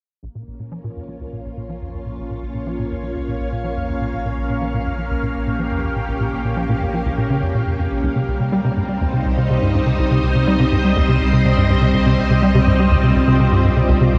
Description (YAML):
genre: ambient, sequencer-driven space music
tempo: 123 BPM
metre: 4/4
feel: straight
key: Bb dorian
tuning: A4 = 441 Hz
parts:
  - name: string machine, full ensemble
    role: sustained chords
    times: 0.6-14.2 s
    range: G3 to F5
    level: -23 LUFS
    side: equal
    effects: phaser, ensemble chorus
  - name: tight sequencer bass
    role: riff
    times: 0.2-14.2 s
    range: Bb1 to G3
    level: -21 LUFS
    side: equal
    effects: ensemble chorus, cassette tape, analog delay
  - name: warm sub bass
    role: bass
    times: 0.2-14.2 s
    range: Bb1 to C2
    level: -27 LUFS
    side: equal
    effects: none
room: wet huge ambient reverb, RT60 8.0 s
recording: dark, warm production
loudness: -18 LUFS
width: mono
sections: 0.2-14.2 A section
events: fade-in on analog synth bass 0.2-14.2; fade-in on string machine 0.2-14.2; fade-in on sub bass 0.2-14.2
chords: 0.2 Bbm; 8.0 Cm